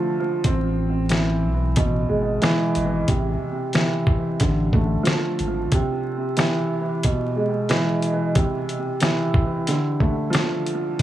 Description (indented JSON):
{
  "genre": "hip hop, boom-bap hip-hop",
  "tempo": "91 BPM",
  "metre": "4/4",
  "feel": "swing 62% on 16ths",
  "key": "A harmonic minor",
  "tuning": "A4 = 440 Hz",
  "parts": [
    { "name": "dark upright piano", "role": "accompaniment", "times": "0.0-11.0 s", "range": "B2 to C4", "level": "-22 LUFS", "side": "right 1 dB", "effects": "high-pass filter, low-pass filter, analog delay" },
    { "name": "dusty soul sampler-style drum kit", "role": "drums", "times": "0.4-11.0 s", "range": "hi-hat, kick drum, rim click, snare drum", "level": "-21 LUFS", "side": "equal", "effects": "none" },
    { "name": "saturated sub bass", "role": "bass", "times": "0.5-5.7, 11.0 s", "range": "G#1 to B1", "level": "-23 LUFS", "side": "left 1 dB", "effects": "none" }
  ],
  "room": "light reverb",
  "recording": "echo-heavy mix, vinyl crackle, small room ambience",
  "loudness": "-19 LUFS",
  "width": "side -13 dB against mid",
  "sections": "0.4-11.0 A section",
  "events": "break 0.0-0.4",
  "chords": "0.4 Amadd9; 1.8 E; 3.1 Am; 4.4 F6/A; 5.7 C; 7.0 E; 8.4 C; 9.7 F6"
}